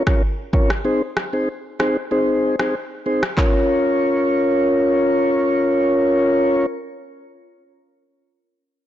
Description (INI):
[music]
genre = dancehall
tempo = 95 BPM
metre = 4/4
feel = straight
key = Bb minor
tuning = A4 = 440 Hz
[part]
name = mellow tonewheel organ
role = accompaniment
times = 0.0-6.7 s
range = C4 to Db5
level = -17 LUFS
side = equal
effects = slow rotary speaker, sidechain pumping
[part]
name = afro-pop drum kit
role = drums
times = 0.1-3.5 s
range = handclaps, kick drum, rim click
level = -20 LUFS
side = equal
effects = soft clipping on snare
[sound]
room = light reverb, digital ambience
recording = blown-out, overdriven recording, overdrive, nothing above 7.8 kHz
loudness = -16 LUFS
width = side -12 dB against mid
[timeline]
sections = 0.0-3.4 A section; 3.4-5.9 B section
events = none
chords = 0.0 Bbm; 0.8 Ab; 3.4 Bbm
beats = 0.22 | 0.85 1.48 2.11 2.74 | 3.38 4.01 4.64 5.27